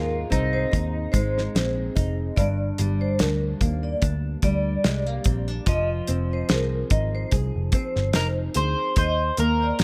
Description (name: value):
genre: indie pop, bedroom pop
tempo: 73 BPM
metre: 4/4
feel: swing 55% on 16ths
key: unclear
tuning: A4 = 440 Hz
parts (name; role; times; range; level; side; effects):
- electric guitar at the edge of break-up; melody; 0.0-1.9, 8.2-9.8 s; Eb4 to C5; -29 LUFS; equal; analog chorus
- vibraphone with medium hard mallets; second line; 0.0-9.8 s; Bb4 to Eb5; -33 LUFS; equal; ensemble chorus, analog delay
- nylon-string guitar; accompaniment; 0.0-9.8 s; G2 to Ab4; -32 LUFS; equal; lush chorus, vibrato effect
- vintage muted picked electric bass; bass; 0.0-9.8 s; F1 to Eb2; -28 LUFS; equal; none
- damped 70s drum kit; drums; 0.3-9.8 s; hi-hat, kick drum, snare drum; -26 LUFS; equal; none
room: light reverb, small room ambience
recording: none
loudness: -24 LUFS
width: mono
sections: 0.0-9.8 A section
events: none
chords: 0.0 Ab; 2.4 Gm; 5.7 Fm7; 9.0 Eb5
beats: 0.73 1.55 | 2.38 3.20 4.02 4.85 | 5.67 6.50 7.32 8.14 | 8.97 9.79